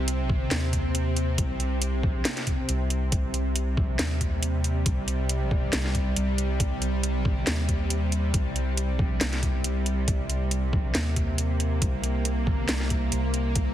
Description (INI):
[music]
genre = deep dubstep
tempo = 138 BPM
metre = 4/4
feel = swing 54% on 16ths, half-time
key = C minor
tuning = A4 = 440 Hz
[part]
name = bowed-like drone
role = sustained chords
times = 0.0-13.7 s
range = C3 to C4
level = -30 LUFS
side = equal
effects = built-in reverb
[part]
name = soft dub sub bass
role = bass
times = 0.0-13.7 s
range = C2 to Eb2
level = -27 LUFS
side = equal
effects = none
[part]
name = garage drum kit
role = drums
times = 0.1-13.7 s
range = hi-hat, snare drum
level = -29 LUFS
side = equal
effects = none
[part]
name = electronic kick drum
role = drums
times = 0.3-13.7 s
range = none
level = -27 LUFS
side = equal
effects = none
[sound]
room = light reverb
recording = heavily compressed radio sound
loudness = -24 LUFS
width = side -12 dB against mid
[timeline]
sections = 0.0-13.7 A section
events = none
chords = 0.0 Cm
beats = 0.08 0.51 0.95 | 1.38 1.82 2.25 2.69 | 3.12 3.56 3.99 4.43 | 4.86 5.30 5.73 6.17 | 6.60 7.04 7.47 7.91 | 8.34 8.77 9.21 9.64 | 10.08 10.51 10.95 11.38 | 11.82 12.25 12.69 13.12 | 13.56